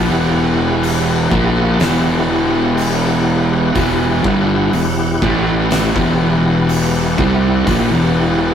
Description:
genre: stoner and doom metal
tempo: 61 BPM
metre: 4/4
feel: straight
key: E minor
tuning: A4 = 440 Hz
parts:
  - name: tonewheel organ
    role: sustained chords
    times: 0.0-8.5 s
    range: E4 to F#5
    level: -20 LUFS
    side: left 1 dB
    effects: slow rotary speaker, overdrive, chorus vibrato
  - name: fuzz guitar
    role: riff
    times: 0.0-8.5 s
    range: E2 to C4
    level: -16 LUFS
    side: equal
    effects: distortion
  - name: fuzz fingered electric bass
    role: bass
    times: 0.0-8.5 s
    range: E1 to C2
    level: -19 LUFS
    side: equal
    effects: overdrive
  - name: oversized low-tuned drum kit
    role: drums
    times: 0.8-7.9 s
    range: hi-hat, kick drum, snare drum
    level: -22 LUFS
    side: equal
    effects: none
room: light reverb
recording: rough rehearsal-room recording, tube saturation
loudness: -12 LUFS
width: side -8 dB against mid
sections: 0.0-8.5 A section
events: none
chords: 0.0 Em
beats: 0.82 1.79 2.77 | 3.75 4.73 5.71 6.68 | 7.67

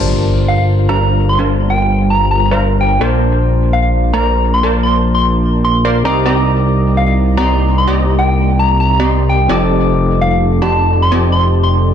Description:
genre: future bass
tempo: 148 BPM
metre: 4/4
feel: swing 54% on 16ths, half-time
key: G minor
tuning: A4 = 440 Hz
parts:
  - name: barky tine electric piano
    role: accompaniment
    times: 0.0-11.9 s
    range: Bb2 to D6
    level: -21 LUFS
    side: left 4 dB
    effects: vintage 12-bit sampler grit, ping-pong delay
  - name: shimmering ambient pad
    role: sustained chords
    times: 0.7-11.9 s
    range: C3 to A4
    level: -25 LUFS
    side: equal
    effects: none
  - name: supersaw stab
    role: riff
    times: 0.0-11.9 s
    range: F3 to C6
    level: -19 LUFS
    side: right 1 dB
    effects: low-pass filter, ping-pong delay
  - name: fat analog bass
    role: bass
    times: 0.0-11.9 s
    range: F1 to C2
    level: -14 LUFS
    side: equal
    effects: tube saturation
  - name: impact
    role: sound effects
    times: 0.0-1.4 s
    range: none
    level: -24 LUFS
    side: right 1 dB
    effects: none
  - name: soft struck synth lead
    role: melody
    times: 0.5-11.7 s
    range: F5 to C6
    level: -17 LUFS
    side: equal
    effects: chorus, ping-pong delay
room: light reverb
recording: dense, heavily limited modern master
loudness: -10 LUFS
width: side -8 dB against mid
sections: 0.0-11.9 A section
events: impact 0.0-1.4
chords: 0.0 Gm11; 3.0 Bbmaj7; 6.1 Cm9; 9.5 F13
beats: 0.17 0.58 0.98 | 1.39 1.79 2.20 2.60 | 3.01 3.42 3.82 4.23 | 4.63 5.04 5.44 5.85 | 6.25 6.66 7.07 7.47 | 7.88 8.28 8.69 9.09 | 9.50 9.90 10.31 10.71 | 11.12 11.52 11.93

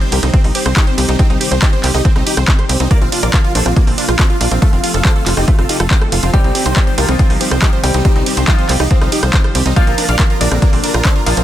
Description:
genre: uplifting trance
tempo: 140 BPM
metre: 4/4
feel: straight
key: C dorian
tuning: A4 = 440 Hz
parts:
  - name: big supersaw lead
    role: melody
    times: 0.0-11.4 s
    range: C4 to F5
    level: -21 LUFS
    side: equal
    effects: phaser, sidechain pumping, digital delay
  - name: lush unison pad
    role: sustained chords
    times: 0.0-11.4 s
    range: C3 to A4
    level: -24 LUFS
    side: equal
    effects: chorus, sidechain pumping
  - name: wide unison pluck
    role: arpeggios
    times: 0.0-11.4 s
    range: A3 to Eb5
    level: -24 LUFS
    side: right 4 dB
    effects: sidechain pumping, digital delay
  - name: punchy analog drum machine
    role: drums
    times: 0.0-11.4 s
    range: handclaps, hi-hat, ride cymbal, rim click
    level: -19 LUFS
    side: right 1 dB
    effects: sidechain pumping on hats, sidechain pumping on cymbals
  - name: tight sequencer bass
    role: bass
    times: 0.1-11.4 s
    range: F1 to C2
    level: -16 LUFS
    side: equal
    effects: sidechain pumping
  - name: electronic kick drum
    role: drums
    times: 0.3-11.1 s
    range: none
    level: -12 LUFS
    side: equal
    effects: none
  - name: bright grand piano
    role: second line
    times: 6.3-11.4 s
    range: D3 to G4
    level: -21 LUFS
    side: left 1 dB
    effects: digital delay
room: digital ambience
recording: dense, heavily limited modern master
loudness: -11 LUFS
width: side -12 dB against mid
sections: 0.0-11.4 A section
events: none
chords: 0.0 Cm; 2.9 Bbadd9; 4.6 F; 6.3 Cm; 9.8 Bbadd9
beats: 0.34 0.76 | 1.19 1.62 2.05 2.48 | 2.91 3.34 3.76 4.19 | 4.62 5.05 5.48 5.91 | 6.34 6.76 7.19 7.62 | 8.05 8.48 8.91 9.34 | 9.76 10.19 10.62 11.05

